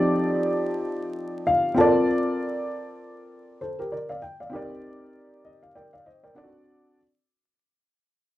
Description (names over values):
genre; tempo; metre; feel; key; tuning
hip hop; 98 BPM; 4/4; swing 58% on 16ths; unclear; A4 = 440 Hz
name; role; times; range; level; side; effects
dark upright piano; solo; 0.0-7.0 s; F3 to A5; -23 LUFS; equal; none
room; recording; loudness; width
wet small room reverb, RT60 0.5 s; dark, warm production, vinyl crackle; -22 LUFS; side -15 dB against mid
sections
0.0-7.0 A section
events
fade-out 0.0-7.0; upright piano fill 1.2-2.1, 5.1-7.0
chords
0.0 F13; 1.8 Bbmaj7; 4.5 Cm9; 6.4 D7